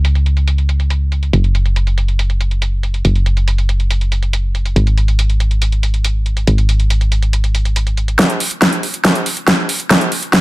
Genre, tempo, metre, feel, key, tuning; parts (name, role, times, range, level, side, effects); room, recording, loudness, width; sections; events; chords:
uplifting trance; 140 BPM; 4/4; straight; A4 = 440 Hz
solid FM bass; bass; 0.0-8.2 s; Gb1 to Db2; -13 LUFS; equal; sidechain pumping
big-room dance drum kit; drums; 0.0-10.4 s; hi-hat, snare drum; -16 LUFS; equal; overdrive, low-pass filter on hats, low-pass filter on snare
electronic kick drum; drums; 8.2-10.4 s; -19 LUFS; equal; distortion, overdrive, high-pass filter on kick
little or no reverb; -13 LUFS; side -19 dB against mid
0.0-8.2 A section; 8.2-10.4 B section
build-up 8.2-10.4; drum fill 8.2-10.4